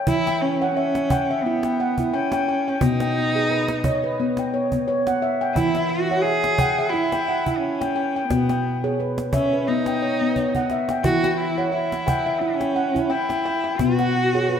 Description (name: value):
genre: world meditative, meditative tuned percussion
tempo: 88 BPM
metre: 4/4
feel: swing 55% on 16ths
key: unclear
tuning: A4 = 441 Hz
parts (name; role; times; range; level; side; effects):
- handpan; arpeggios; 0.0-14.6 s; B2 to G5; -22 LUFS; left 1 dB; tape echo
- rich cello; melody; 0.1-14.6 s; B3 to G#4; -24 LUFS; right 1 dB; tape echo
- cajon; percussion; 0.1-14.1 s; none; -28 LUFS; right 1 dB; none
room: wet recital hall reverb, RT60 1.5 s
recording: none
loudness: -19 LUFS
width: side -8 dB against mid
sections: 0.1-14.6 A section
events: drum fill 10.4-11.1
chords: 0.1 E5; 2.8 B; 5.6 E; 8.3 B; 11.1 Em69; 13.8 B5